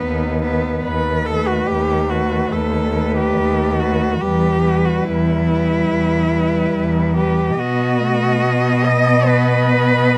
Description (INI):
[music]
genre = classical, lyrical piece for cello ensemble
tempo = 71 BPM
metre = 4/4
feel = rubato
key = unclear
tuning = A4 = 440 Hz
[part]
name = rich cello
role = melody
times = 0.0-10.2 s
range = B4 to E5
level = -26 LUFS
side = equal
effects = none
[part]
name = rich cello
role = second line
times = 0.0-10.2 s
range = D#4 to D#5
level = -22 LUFS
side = equal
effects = none
[part]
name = warm cello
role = accompaniment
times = 0.0-10.2 s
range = G3 to B3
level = -26 LUFS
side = equal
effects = none
[part]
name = warm cello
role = bass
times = 0.0-10.2 s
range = D#2 to B2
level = -21 LUFS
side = equal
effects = none
[sound]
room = light reverb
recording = close, detailed microphones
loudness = -17 LUFS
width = mono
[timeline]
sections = 0.0-10.2 A section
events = none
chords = 0.0 B/D#; 0.9 B7/D#; 4.2 Em; 7.6 B